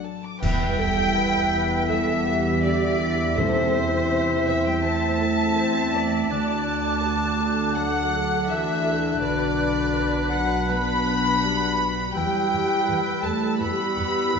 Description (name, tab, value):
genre	cinematic, emotional film score for orchestra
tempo	82 BPM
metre	4/4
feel	rubato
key	unclear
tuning	A4 = 440 Hz
part	warm symphonic violin section	melody	0.0-14.4 s	C5 to D6	-28 LUFS	left 2 dB	none
part	dark French horn section	sustained chords	0.0-14.4 s	G3 to G4	-29 LUFS	left 3 dB	none
part	concert harp	arpeggios	0.0-14.4 s	A2 to B5	-32 LUFS	left 9 dB	none
part	dark clarinet	second line	0.4-14.4 s	B3 to E4	-32 LUFS	left 2 dB	none
part	dark symphonic violin section	second line	0.4-14.4 s	C5 to B5	-30 LUFS	equal	none
part	hollow concert flute	second line	0.4-14.4 s	E6 to B6	-30 LUFS	left 2 dB	none
part	warm oboe	second line	0.4-14.4 s	B4 to E5	-32 LUFS	right 2 dB	none
part	dark symphonic viola section	accompaniment	0.4-14.4 s	G3 to D5	-31 LUFS	right 3 dB	none
part	dark symphonic double bass section	bass	0.4-14.4 s	B1 to E2	-31 LUFS	right 4 dB	none
part	warm symphonic cello section	bass	0.4-14.4 s	C3 to B3	-29 LUFS	right 6 dB	none
part	clash cymbals and concert bass drum	percussion	0.4-1.9 s	none	-29 LUFS	equal	none
part	timpani	percussion	3.4-4.4 s	E2	-32 LUFS	equal	none
room	wet scoring stage reverb, RT60 1.6 s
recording	nothing above 7.8 kHz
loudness	-20 LUFS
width	side -6 dB against mid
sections	0.4-14.4 A section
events	band accent 0.4-1.2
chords	0.4 Em; 3.4 Amadd9/E; 6.3 D; 9.2 Bm; 12.1 Em